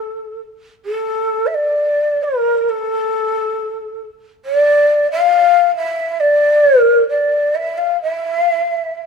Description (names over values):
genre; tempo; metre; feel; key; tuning
japanese traditional, Japanese chamber music; 66 BPM; 2/4; rubato; A miyako bushi; A4 = 440 Hz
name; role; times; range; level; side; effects
breathy mellow shakuhachi; solo; 0.0-9.1 s; A4 to F5; -14 LUFS; left 1 dB; none
room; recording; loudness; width
light reverb; close, detailed microphones; -13 LUFS; side -5 dB against mid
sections
0.8-9.1 A section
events
none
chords
none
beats
| 0.84 1.77 | 2.67 3.58 | 4.46 5.34 | 6.23 7.13 | 8.05 8.96